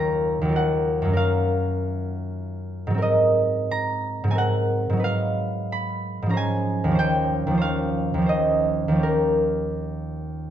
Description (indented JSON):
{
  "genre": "classical, solo harp piece",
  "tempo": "77-100 BPM",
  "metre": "3/4",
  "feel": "rubato",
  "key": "unclear",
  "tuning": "A4 = 440 Hz",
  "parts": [
    { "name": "concert harp", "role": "solo", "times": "0.0-10.5 s", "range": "Eb2 to B5", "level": "-21 LUFS", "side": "equal", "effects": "none" }
  ],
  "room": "moderate recital hall reverb, RT60 1.4 s",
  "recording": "none",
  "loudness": "-21 LUFS",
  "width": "side -10 dB against mid",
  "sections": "0.0-10.5 A section",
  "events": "none",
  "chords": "0.0 Ebm9; 1.2 Gbmaj7; 3.0 Ab9; 5.0 Bmaj7#11/Ab; 6.4 Dbmaj9/Ab; 7.0 Eb13; 9.0 Eb9"
}